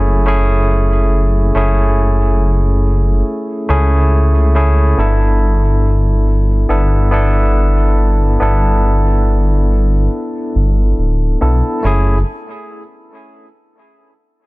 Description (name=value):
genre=trip hop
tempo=70 BPM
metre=4/4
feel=swing 57% on 16ths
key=F# phrygian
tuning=A4 = 441 Hz
part: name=barky tine electric piano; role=accompaniment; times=0.0-12.2 s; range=A3 to A4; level=-17 LUFS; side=equal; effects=tremolo, low-pass filter, tape echo
part: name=dark detuned saw bass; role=bass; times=0.0-12.2 s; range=D1 to C#2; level=-12 LUFS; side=equal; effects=none
room=digital ambience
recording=dense, heavily limited modern master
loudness=-11 LUFS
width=side -21 dB against mid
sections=0.0-11.8 A section; 11.8-14.5 B section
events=filter sweep on tine electric piano 0.0-11.8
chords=0.0 F#m9; 5.0 G69; 11.8 F#m9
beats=0.69 | 1.55 2.40 3.26 4.12 | 4.97 5.83 6.69 7.55 | 8.40 9.26 10.12 10.97 | 11.83